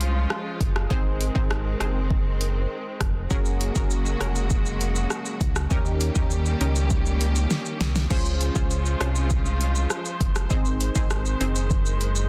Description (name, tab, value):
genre	dancehall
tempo	100 BPM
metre	4/4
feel	straight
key	Db major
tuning	A4 = 440 Hz
part	rich studio string section	sustained chords	0.0-12.3 s	Db3 to C5	-34 LUFS	equal	sidechain pumping
part	round analog bass	bass	0.0-12.3 s	F1 to Eb2	-27 LUFS	equal	none
part	deep house drum kit	drums	0.0-12.3 s	crash cymbal, hi-hat, kick drum, rim click, shaker, snare drum	-28 LUFS	equal	soft clipping on snare
part	analog pluck	accompaniment	0.9-11.7 s	C4 to C5	-34 LUFS	equal	chorus, sidechain pumping
room	digital ambience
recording	dense, heavily limited modern master, faint mains hum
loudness	-24 LUFS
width	mono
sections	0.0-8.1 A section; 8.1-12.3 B section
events	drum fill 7.5-8.1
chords	0.0 Dbmaj7; 0.9 Ab; 3.3 Gbadd9; 5.7 Eb7; 8.1 Dbmaj7; 10.5 Ab